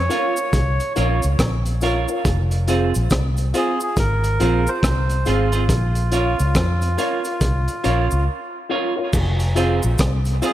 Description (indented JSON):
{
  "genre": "dub reggae",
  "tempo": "70 BPM",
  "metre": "4/4",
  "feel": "swing 62% on 16ths",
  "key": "F minor",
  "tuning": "A4 = 440 Hz",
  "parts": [
    { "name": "melodica", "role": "melody", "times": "0.0-10.5 s", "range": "F4 to Db5", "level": "-25 LUFS", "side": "right 1 dB", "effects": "dub echo" },
    { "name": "vintage muted fingered electric bass", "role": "bass", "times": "0.0-10.4 s", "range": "F1 to F2", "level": "-20 LUFS", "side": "equal", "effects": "none" },
    { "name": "semi-hollow electric guitar", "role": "accompaniment", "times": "0.1-10.5 s", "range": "C4 to Db5", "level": "-26 LUFS", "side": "right 6 dB", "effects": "dub echo" },
    { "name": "dark upright piano", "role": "stabs", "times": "0.1-10.5 s", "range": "F4 to F5", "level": "-26 LUFS", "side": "left 3 dB", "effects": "dub echo" },
    { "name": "crunchy breakbeat drum kit", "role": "drums", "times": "0.1-10.5 s", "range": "crash cymbal, hi-hat, kick drum, rim click", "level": "-23 LUFS", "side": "equal", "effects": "none" },
    { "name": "cabasa", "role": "percussion", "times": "0.1-10.5 s", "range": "none", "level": "-36 LUFS", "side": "right 1 dB", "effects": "none" }
  ],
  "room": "light reverb, studio ambience",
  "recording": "none",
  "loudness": "-17 LUFS",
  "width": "side -13 dB against mid",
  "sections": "0.0-9.1 A section; 9.1-10.5 A section",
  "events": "break 8.3-9.1",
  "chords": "0.0 Bbm; 2.3 Fm; 5.7 Bbm; 9.1 Fm"
}